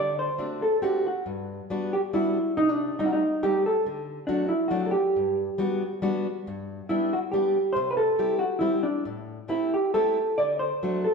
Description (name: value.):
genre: musette waltz.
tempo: 138 BPM.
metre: 3/4.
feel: swing 54% on 8ths, rubato.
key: G major.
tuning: A4 = 440 Hz.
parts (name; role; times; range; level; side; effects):
hollow-body jazz guitar; melody; 0.0-11.1 s; D4 to D5; -24 LUFS; right 1 dB; none.
fingerpicked plugged-in steel-string acoustic guitar; accompaniment; 0.0-11.1 s; G2 to G4; -30 LUFS; left 3 dB; none.
room: wet stone room reverb, RT60 1.5 s.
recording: band playing live in one room.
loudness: -23 LUFS.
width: side -4 dB against mid.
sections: 0.0-11.1 A section.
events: none.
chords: 0.0 D7; 1.3 Gmaj7; 2.6 Cm6; 3.9 D; 5.1 Gmaj7; 6.5 G; 7.8 C; 9.1 Am7; 10.4 D.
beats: 0.39 0.83 | 1.27 1.71 2.15 | 2.58 3.00 3.43 | 3.86 4.29 4.71 | 5.15 5.58 6.03 | 6.47 6.91 7.34 | 7.77 8.20 8.63 | 9.06 9.49 9.93 | 10.37 10.81.